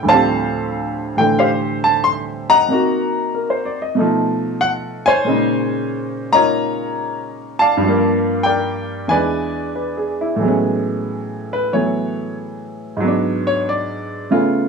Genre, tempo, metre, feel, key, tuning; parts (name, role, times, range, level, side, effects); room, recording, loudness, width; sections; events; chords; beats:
solo jazz; 93 BPM; 4/4; swing 68% on 8ths, rubato; A major from 10.4 s; A4 = 440 Hz
clear baby grand piano; solo; 0.0-14.7 s; D2 to C6; -16 LUFS; equal
moderate small room reverb, RT60 0.5 s; studio ambience; -16 LUFS; side -5 dB against mid
0.0-10.4 A section; 10.4-14.7 B section
grand piano solo 10.4-14.7
0.1 Dm11; 2.7 Cm7b5; 4.0 B7#11; 5.3 Bbm11; 7.8 Gm7; 9.1 E7; 10.4 Amaj13; 13.0 G#m7b5
| 0.09 0.74 1.40 2.05 | 2.70 3.34 3.98 4.62 | 5.26 5.90 6.53 7.17 | 7.82 8.46 9.10 9.77 | 10.43 11.09 11.74 12.39 | 13.03 13.67 14.31